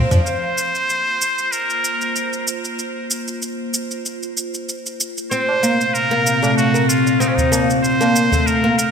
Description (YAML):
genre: organic downtempo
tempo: 95 BPM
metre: 4/4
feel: swing 54% on 16ths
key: unclear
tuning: A4 = 440 Hz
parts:
  - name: warbly tape-like pad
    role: sustained chords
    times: 0.0-8.9 s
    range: Bb2 to F5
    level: -22 LUFS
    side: left 1 dB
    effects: chorus, built-in reverb
  - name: oud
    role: arpeggios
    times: 0.0-0.2, 5.3-8.7 s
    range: F3 to C4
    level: -20 LUFS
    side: equal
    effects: digital delay
  - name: deep house drum kit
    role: drums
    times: 0.1-8.9 s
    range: hi-hat, shaker, toms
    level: -24 LUFS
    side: right 1 dB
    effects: gated reverb
  - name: tabla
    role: percussion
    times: 0.1-0.2, 5.5-8.4 s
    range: none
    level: -25 LUFS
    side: right 1 dB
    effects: none
  - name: trumpet with straight mute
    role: melody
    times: 0.3-8.9 s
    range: Db4 to C5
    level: -21 LUFS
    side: equal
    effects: digital delay
room: moderate lush hall reverb, RT60 2.6 s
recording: bright 1980s-style digital production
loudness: -16 LUFS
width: side -6 dB against mid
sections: 0.3-8.9 A section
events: drum fill 0.0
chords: 0.3 Bb5; 5.3 Fsus4/Bb